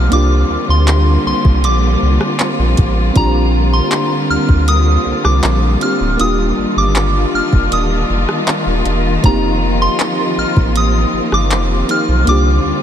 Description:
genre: contemporary R&B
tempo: 79 BPM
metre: 4/4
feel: straight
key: unclear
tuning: A4 = 443 Hz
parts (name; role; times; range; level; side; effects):
- soft synth bell; melody; 0.0-12.8 s; Bb5 to F6; -19 LUFS; equal; chorus, tape echo
- FM electric piano; accompaniment; 0.0-12.8 s; A3 to G4; -20 LUFS; right 1 dB; chorus
- warm studio string section; sustained chords; 0.0-12.8 s; D3 to F4; -19 LUFS; left 1 dB; none
- warm sub bass; bass; 0.0-12.7 s; D1 to D2; -14 LUFS; equal; none
- downlifter; sound effects; 0.0-3.2 s; none; barely audible; none; none
- smooth R&B drum kit; drums; 0.1-12.4 s; handclaps, hi-hat, kick drum, rim click; -19 LUFS; equal; none
room: moderate huge ambient reverb, RT60 7.5 s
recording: dreamy mix soaked in reverb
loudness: -11 LUFS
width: side -9 dB against mid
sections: 0.0-12.8 A section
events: kick muted 7.7-9.2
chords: 0.1 C9sus4; 3.2 Bb69; 6.2 Ebmaj9; 9.2 F7sus4; 12.3 C9sus4

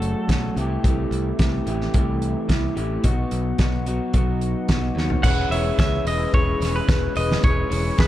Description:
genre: indie rock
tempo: 109 BPM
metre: 4/4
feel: straight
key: E major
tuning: A4 = 440 Hz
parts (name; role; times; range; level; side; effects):
- clean electric guitar; melody; 0.0-0.5, 5.2-8.1 s; A4 to F#5; -26 LUFS; right 2 dB; spring reverb, plate reverb
- electric guitar through a small old amp; riff; 0.0-8.1 s; F#2 to B4; -28 LUFS; left 8 dB; none
- electric guitar through a small old amp; riff; 0.0-5.2 s; F#2 to G4; -28 LUFS; right 6 dB; wide subtle chorus, tape echo
- modern bright picked electric bass; bass; 0.0-8.1 s; E1 to D#2; -25 LUFS; equal; none
- loose indie drum kit; drums; 0.0-8.1 s; crash cymbal, hi-hat, kick drum, snare drum, toms; -21 LUFS; equal; none
- overdriven tine electric piano; second line; 5.2-8.1 s; G#4 to C#5; -32 LUFS; right 7 dB; fast tremolo, plate reverb
- combo organ; sustained chords; 5.2-8.1 s; C#3 to E4; -36 LUFS; right 1 dB; none
- tambourine; percussion; 5.2-8.1 s; none; -44 LUFS; right 16 dB; none
room: light reverb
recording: dark, warm production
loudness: -19 LUFS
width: side -13 dB against mid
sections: 0.0-5.2 A section; 5.2-8.1 B section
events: drum fill 5.0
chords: 0.0 F#m; 0.6 C6; 3.0 B; 5.2 E6

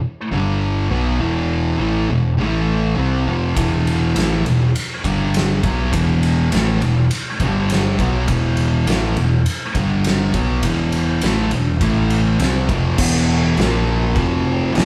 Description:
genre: stoner and doom metal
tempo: 102 BPM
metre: 4/4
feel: straight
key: E phrygian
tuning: A4 = 438 Hz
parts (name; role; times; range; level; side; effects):
- thick fuzz guitar; riff; 0.3-14.8 s; E2 to C4; -23 LUFS; equal; distortion
- thick fuzz guitar; riff; 0.3-14.8 s; E2 to C4; -22 LUFS; equal; distortion
- growling fingered electric bass; bass; 0.3-14.8 s; E1 to C2; -27 LUFS; equal; overdrive
- oversized low-tuned drum kit; drums; 3.6-14.8 s; crash cymbal, kick drum, ride cymbal, snare drum; -24 LUFS; equal; none
room: moderate large studio reverb, RT60 1.0 s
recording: band playing live in one room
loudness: -18 LUFS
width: mono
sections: 0.0-13.0 A section; 13.0-14.8 B section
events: none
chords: 0.3 G5; 0.9 E5; 2.4 A5; 3.0 Em; 5.0 G5; 5.6 E5; 7.4 G5; 8.0 E5; 9.7 G5; 10.3 E5; 11.8 A5; 12.4 Fsus2; 13.0 E5; 13.6 A#5; 14.2 F5

